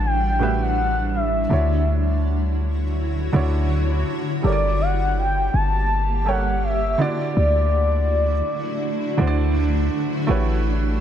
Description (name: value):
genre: contemporary R&B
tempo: 82 BPM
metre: 4/4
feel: swing 54% on 16ths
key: D major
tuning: A4 = 441 Hz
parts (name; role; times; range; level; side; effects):
- gliding portamento lead; melody; 0.0-9.9 s; D5 to A5; -24 LUFS; left 1 dB; chorus, ping-pong delay
- dark baby grand piano; accompaniment; 0.0-11.0 s; A2 to E5; -26 LUFS; right 4 dB; none
- granular cloud pad; sustained chords; 0.0-11.0 s; D3 to C#5; -26 LUFS; right 1 dB; built-in reverb
- warm 808-style bass; bass; 0.0-11.0 s; G1 to D2; -21 LUFS; equal; none
room: digital ambience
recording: none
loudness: -18 LUFS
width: side -10 dB against mid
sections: 0.0-11.0 A section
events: none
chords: 0.0 A13; 1.5 Dmaj9; 4.4 Gmadd9; 7.0 Dadd9; 10.3 A13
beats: 0.04 0.78 | 1.51 2.24 2.97 3.70 | 4.43 5.17 5.90 6.63 | 7.36 8.09 8.82 9.55 | 10.29